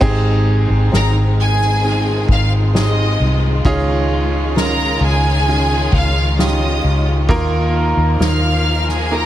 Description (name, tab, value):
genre	pop ballad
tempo	66 BPM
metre	4/4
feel	straight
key	Ab major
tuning	A4 = 440 Hz
part	clear grand piano	accompaniment	0.0-9.3 s	Ab2 to Bb4	-20 LUFS	right 2 dB	none
part	warm studio string section	sustained chords	0.0-9.3 s	Eb3 to Bb4	-26 LUFS	left 3 dB	none
part	vintage muted fingered electric bass	bass	0.0-9.3 s	Ab1 to Eb2	-16 LUFS	equal	none
part	soft-mallet drum kit	drums	0.0-9.3 s	crash cymbal, kick drum, ride cymbal, snare drum	-22 LUFS	equal	none
part	warm studio violin section	melody	0.9-9.3 s	Ab4 to F6	-20 LUFS	left 1 dB	none
room	small room ambience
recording	none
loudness	-13 LUFS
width	side -12 dB against mid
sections	0.0-9.3 A section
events	none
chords	0.0 Abmaj7; 3.6 Dbadd9; 7.3 Ebsus2